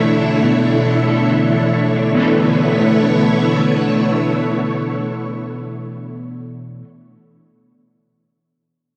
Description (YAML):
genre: dream pop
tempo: 69 BPM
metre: 4/4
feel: straight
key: B minor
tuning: A4 = 440 Hz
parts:
  - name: string machine, violins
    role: sustained chords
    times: 0.0-6.4 s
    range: D3 to C#5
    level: -20 LUFS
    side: equal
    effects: ensemble chorus
  - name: electric guitar at the edge of break-up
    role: arpeggios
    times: 0.0-6.9 s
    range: B2 to A4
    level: -20 LUFS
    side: equal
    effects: analog chorus, tape echo
room: wet lush hall reverb, RT60 3.2 s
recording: dark, warm production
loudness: -16 LUFS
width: mono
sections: 0.0-2.2 A section; 2.2-5.6 B section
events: none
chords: 0.0 Bm11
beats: 0.43 1.30 | 2.17 3.04 3.90 4.77